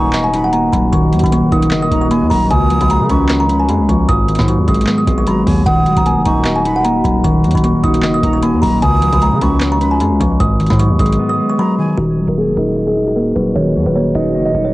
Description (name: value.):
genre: hip hop, trap.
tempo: 152 BPM.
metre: 4/4.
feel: half-time.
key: Eb minor.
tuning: A4 = 445 Hz.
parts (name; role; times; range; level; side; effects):
kalimba; melody; 0.0-14.7 s; Gb4 to Eb6; -18 LUFS; equal; low-pass filter, cassette tape, analog delay.
breathy jazz flute; second line; 0.0-12.0 s; Ab5 to Eb6; -22 LUFS; right 2 dB; analog delay.
mellow electric guitar; accompaniment; 0.0-14.7 s; Ab2 to Eb5; -15 LUFS; left 1 dB; low-pass filter.
deep dark ambient pad; sustained chords; 0.3-14.7 s; Db3 to Cb5; -22 LUFS; equal; chorus, built-in reverb, low-pass filter.
distorted 808-style bass; bass; 0.0-14.7 s; Eb1 to Db3; -19 LUFS; equal; distortion.
booming analog drum machine; drums; 0.1-11.2 s; handclaps, hi-hat, kick drum, snare drum; -18 LUFS; equal; cassette tape.
room: light reverb.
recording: home recording on cassette.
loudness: -11 LUFS.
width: side -18 dB against mid.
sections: 0.0-12.0 A section; 12.0-14.7 B section.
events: break 11.2-12.0; filter sweep 12.0-14.7.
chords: 0.0 Ebm; 2.5 Db; 4.1 Abm7; 5.7 Ebm; 8.8 Db; 10.4 Abm7; 12.0 Ebm.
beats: 0.14 0.53 | 0.93 1.32 1.72 2.11 | 2.51 2.90 3.30 3.69 | 4.08 4.48 4.88 5.27 | 5.66 6.06 6.45 6.85 | 7.24 7.64 8.03 8.43 | 8.82 9.22 9.61 10.01 | 10.40 10.80 11.19 11.59 | 11.98 12.38 12.77 13.16 | 13.56 13.95 14.35.